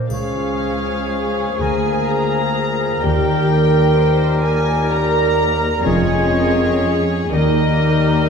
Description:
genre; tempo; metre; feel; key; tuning
classical, slow romantic movement for symphony orchestra; 38-43 BPM (dotted quarters); 6/8; rubato; unclear; A4 = 438 Hz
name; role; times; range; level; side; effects
mellow clarinet; second line; 0.0-8.3 s; Eb4 to Ab4; -26 LUFS; left 5 dB; none
concert harp; arpeggios; 0.0-8.3 s; Bb2 to Eb5; -21 LUFS; left 3 dB; none
rich studio violin section; melody; 0.1-8.3 s; Db5 to Bb5; -24 LUFS; left 2 dB; none
warm chamber violin section; second line; 0.1-8.3 s; G4 to C5; -25 LUFS; left 1 dB; none
warm oboe; second line; 0.1-8.3 s; Ab4 to Db5; -25 LUFS; right 1 dB; none
mellow bassoon; accompaniment; 0.1-8.3 s; F3 to Ab3; -25 LUFS; left 2 dB; none
rich studio viola section; accompaniment; 0.1-8.3 s; Bb3 to Bb4; -22 LUFS; right 4 dB; none
dark studio cello section; bass; 0.1-8.3 s; Db2 to F2; -23 LUFS; right 1 dB; none
warm studio double bass section; bass; 0.1-8.3 s; F1 to Eb2; -25 LUFS; right 1 dB; none
triangle; percussion; 0.1-2.0 s; none; -42 LUFS; left 5 dB; none
room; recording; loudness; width
wet recital hall reverb, RT60 1.5 s; heard from further back in the room; -14 LUFS; side -6 dB against mid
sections
0.0-8.3 A section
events
none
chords
0.1 Db; 1.6 Bb7/D; 3.0 Eb; 5.9 Db/F; 7.3 Eb

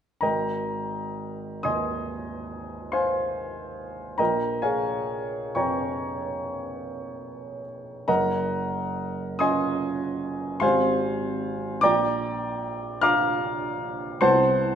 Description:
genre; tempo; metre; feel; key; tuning
classical, impressionist solo piano; 47 BPM (dotted quarters); 9/8; uneven beats, rubato; Ab major; A4 = 443 Hz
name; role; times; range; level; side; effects
warm baby grand piano; solo; 0.2-14.8 s; Gb1 to F6; -24 LUFS; equal; none
room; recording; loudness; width
wet recital hall reverb, RT60 1.6 s; none; -23 LUFS; side -8 dB against mid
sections
0.2-14.8 A section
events
none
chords
0.2 Abmaj9; 4.2 Bbm7; 8.1 Gbmaj7; 10.6 Abmaj7; 11.8 Bb; 14.2 Cmaj7

